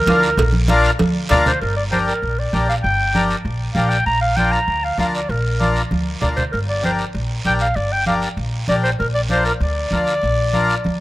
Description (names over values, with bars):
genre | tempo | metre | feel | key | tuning
latin, cumbia | 195 BPM | 4/4 | straight | G minor | A4 = 439 Hz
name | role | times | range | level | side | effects
warm clarinet | melody | 0.0-11.0 s | Bb4 to Bb5 | -20 LUFS | equal | none
accordion | accompaniment | 0.1-10.8 s | D4 to Bb4 | -22 LUFS | left 2 dB | none
upright bass | bass | 0.1-11.0 s | G1 to D2 | -21 LUFS | equal | none
congas | percussion | 0.1-10.9 s | none | -23 LUFS | right 1 dB | none
cowbell and timbales | percussion | 0.1-1.5 s | none | -25 LUFS | right 5 dB | none
guiro | percussion | 0.1-11.0 s | none | -32 LUFS | right 3 dB | none
room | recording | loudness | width
light reverb, small room ambience | rough home demo mix | -16 LUFS | side -17 dB against mid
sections
0.0-1.6 A section; 1.6-11.0 B section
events
clarinet solo 0.0-1.6; drum fill 1.0-1.6, 5.9-6.5, 10.8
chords
0.0 Bb; 1.6 Gm; 4.1 Bb; 6.5 Gm; 9.0 Bb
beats
0.08 | 0.38 0.69 1.00 1.30 | 1.61 1.92 2.22 2.53 | 2.84 3.15 3.45 3.76 | 4.07 4.38 4.68 4.99 | 5.30 5.61 5.92 6.22 | 6.53 6.84 7.15 7.46 | 7.76 8.07 8.38 8.69 | 9.00 9.30 9.61 9.92 | 10.23 10.54 10.84